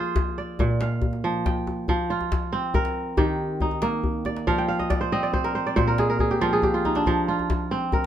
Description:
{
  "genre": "west african traditional, West African string and xylophone music",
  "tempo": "93 BPM (dotted quarters)",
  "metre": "12/8",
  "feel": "straight",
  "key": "F dorian",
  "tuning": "A4 = 440 Hz",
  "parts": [
    { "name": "kora", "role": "arpeggios", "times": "0.0-8.1 s", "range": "Bb2 to G5", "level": "-23 LUFS", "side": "right 2 dB", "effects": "none" },
    { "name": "djembe", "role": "percussion", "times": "0.1-8.0 s", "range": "none", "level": "-27 LUFS", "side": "left 2 dB", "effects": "none" }
  ],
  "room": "light reverb",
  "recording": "dark, warm production",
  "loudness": "-22 LUFS",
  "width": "side -10 dB against mid",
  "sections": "0.0-1.9 A section; 1.9-8.1 B section",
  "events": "kora fill 4.5-7.1",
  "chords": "0.0 Fm; 0.6 Bb; 1.9 F5; 3.2 Eb; 4.5 F5; 5.8 Bb5; 7.1 F5"
}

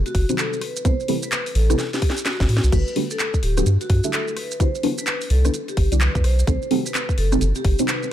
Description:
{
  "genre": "UK garage, two-step garage",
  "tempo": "128 BPM",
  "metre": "4/4",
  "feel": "swing 62% on 16ths",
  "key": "unclear",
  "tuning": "A4 = 440 Hz",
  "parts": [
    { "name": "soft dub sub bass", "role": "bass", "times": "0.0-7.8 s", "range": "D1 to A2", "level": "-18 LUFS", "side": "equal", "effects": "sidechain pumping" },
    { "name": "vibraphone with medium mallets", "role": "melody", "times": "0.1-8.0 s", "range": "F#4 to C5", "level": "-28 LUFS", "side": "left 1 dB", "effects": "ping-pong delay" },
    { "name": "electronic kick drum", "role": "drums", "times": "0.1-7.8 s", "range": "none", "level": "-20 LUFS", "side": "equal", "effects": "none" },
    { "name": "garage drum kit", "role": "drums", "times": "0.1-8.0 s", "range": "crash cymbal, handclaps, hi-hat, rim click, snare drum", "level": "-27 LUFS", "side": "left 1 dB", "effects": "none" },
    { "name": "maracas", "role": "percussion", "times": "0.1-8.1 s", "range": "none", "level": "-33 LUFS", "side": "right 6 dB", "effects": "none" },
    { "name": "deep mellow chord stab", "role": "stabs", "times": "0.3-8.1 s", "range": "C4 to E5", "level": "-25 LUFS", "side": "equal", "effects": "chorus, phaser, digital delay" }
  ],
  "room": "light reverb",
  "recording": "dark, warm production",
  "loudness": "-18 LUFS",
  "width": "side -11 dB against mid",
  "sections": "0.0-8.1 A section",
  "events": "drum fill 1.8-2.7",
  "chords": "0.0 B7b9b13 (rootless); 0.6 Am9; 2.7 Gmaj9; 4.4 Cmaj9#11; 6.2 B7b9b13"
}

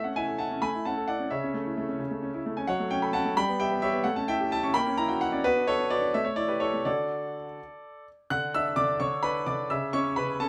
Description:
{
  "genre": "classical-period piano sonatina",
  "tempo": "87 BPM (dotted quarters)",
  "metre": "6/8",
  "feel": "straight",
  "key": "D major",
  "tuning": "A4 = 440 Hz",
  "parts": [
    { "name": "clear grand piano", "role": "solo", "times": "0.0-10.5 s", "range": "C#3 to F#6", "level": "-28 LUFS", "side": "equal", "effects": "none" }
  ],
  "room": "moderate small room reverb, RT60 0.5 s",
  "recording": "none",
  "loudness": "-28 LUFS",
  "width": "mono",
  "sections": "0.0-8.3 A section; 8.3-10.5 B section",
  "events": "none",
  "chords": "0.0 A; 1.3 A/C#; 2.7 F#m; 3.4 G; 4.0 A7; 4.7 F#7/A#; 5.4 Bm; 6.1 A5; 6.9 D; 9.0 Bmadd9/D; 9.7 A/C#"
}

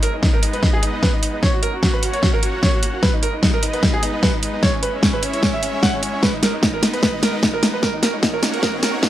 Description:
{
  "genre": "heavy wobble dubstep",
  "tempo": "150 BPM",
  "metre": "4/4",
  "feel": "swing 54% on 16ths, half-time",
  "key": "G# minor",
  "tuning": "A4 = 439 Hz",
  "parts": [
    { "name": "bright concert grand piano", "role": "melody", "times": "0.0-9.1 s", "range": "C#4 to F#5", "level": "-23 LUFS", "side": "right 2 dB", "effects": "low-pass filter, digital delay" },
    { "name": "supersaw pad", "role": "sustained chords", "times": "0.0-9.1 s", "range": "G#3 to F#5", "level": "-28 LUFS", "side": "equal", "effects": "sidechain pumping" },
    { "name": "dubstep drum kit", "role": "drums", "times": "0.0-9.1 s", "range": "hi-hat, snare drum", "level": "-19 LUFS", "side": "equal", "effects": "none" },
    { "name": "electronic kick drum", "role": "drums", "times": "0.2-9.1 s", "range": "none", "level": "-21 LUFS", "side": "equal", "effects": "none" },
    { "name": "riser", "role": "sound effects", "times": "7.3-9.1 s", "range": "none", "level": "-33 LUFS", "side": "right 3 dB", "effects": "none" }
  ],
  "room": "light reverb, digital ambience",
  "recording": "high-pass filter",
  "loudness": "-16 LUFS",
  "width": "side -12 dB against mid",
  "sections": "0.0-9.1 A section",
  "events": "build-up 0.0-9.1; drum fill 0.0-9.1; filter sweep 0.0-9.1",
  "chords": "0.0 G#m; 1.4 F#; 3.0 G#m; 4.6 C#m; 6.2 G#m; 7.8 F#"
}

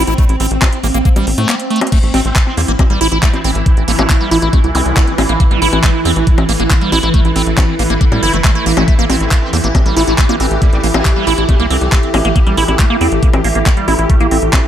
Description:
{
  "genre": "psychedelic trance",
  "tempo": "138 BPM",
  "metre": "4/4",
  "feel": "straight",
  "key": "A phrygian",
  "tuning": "A4 = 441 Hz",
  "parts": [
    { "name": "swarming drone", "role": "sustained chords", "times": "0.0-14.7 s", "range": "E3 to G4", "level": "-19 LUFS", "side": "equal", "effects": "built-in reverb, sidechain pumping" },
    { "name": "liquid acid bass", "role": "riff", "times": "0.0-14.4 s", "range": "G3 to E4", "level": "-18 LUFS", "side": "right 1 dB", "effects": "phaser, auto-pan, sidechain pumping, analog delay" },
    { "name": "tight sequencer bass", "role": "bass", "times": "0.0-14.5 s", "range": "G1 to A2", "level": "-16 LUFS", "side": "equal", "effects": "none" },
    { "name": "garage drum kit", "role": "drums", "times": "0.1-14.6 s", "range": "bongos, crash cymbal, handclaps, hi-hat", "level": "-19 LUFS", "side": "left 2 dB", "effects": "none" },
    { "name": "electronic kick drum", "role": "drums", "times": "0.2-14.6 s", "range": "none", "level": "-11 LUFS", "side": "equal", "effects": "none" },
    { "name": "deep dark ambient pad", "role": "texture", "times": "4.9-14.7 s", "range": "E4 to E5", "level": "-22 LUFS", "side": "right 2 dB", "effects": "chorus, built-in reverb, sidechain pumping" },
    { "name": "metallic wobble bass", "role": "second line", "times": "2.1-4.1, 9.1-11.3 s", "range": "E3 to C4", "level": "-28 LUFS", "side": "right 1 dB", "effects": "analog chorus, sidechain pumping, high-pass filter, analog delay" },
    { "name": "zap", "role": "sound effects", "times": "4.7-4.9 s", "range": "none", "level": "-24 LUFS", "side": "equal", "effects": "none" }
  ],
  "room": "light reverb",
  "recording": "none",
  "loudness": "-10 LUFS",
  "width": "side -10 dB against mid",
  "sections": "0.0-1.9 A section; 1.9-14.7 A section",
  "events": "drop 0.0-1.9, 1.9-14.7; break 1.5-1.9; drum fill 1.7",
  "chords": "0.0 A5"
}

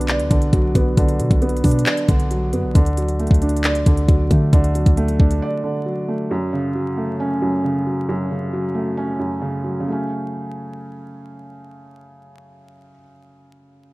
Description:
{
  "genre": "hip hop, trap",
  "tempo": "135 BPM",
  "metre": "4/4",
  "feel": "half-time",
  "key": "F# minor",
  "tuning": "A4 = 440 Hz",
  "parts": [
    { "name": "felt-muted upright piano", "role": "accompaniment", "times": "0.0-13.9 s", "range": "F#2 to D5", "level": "-21 LUFS", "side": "right 1 dB", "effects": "low-pass filter" },
    { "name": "clean 808-style bass", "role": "bass", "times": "0.0-5.4 s", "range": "B1 to D3", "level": "-19 LUFS", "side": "equal", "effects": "none" },
    { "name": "trap drum kit", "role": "drums", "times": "0.0-5.4 s", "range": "handclaps, hi-hat, kick drum", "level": "-17 LUFS", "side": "equal", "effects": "none" }
  ],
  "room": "little or no reverb",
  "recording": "rough home demo mix, vinyl crackle",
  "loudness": "-16 LUFS",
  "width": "side -21 dB against mid",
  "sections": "0.0-6.3 A section; 6.3-9.9 B section; 9.9-13.4 C section",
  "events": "break 5.4-6.3",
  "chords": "0.0 Bm; 2.8 D; 6.3 F#m"
}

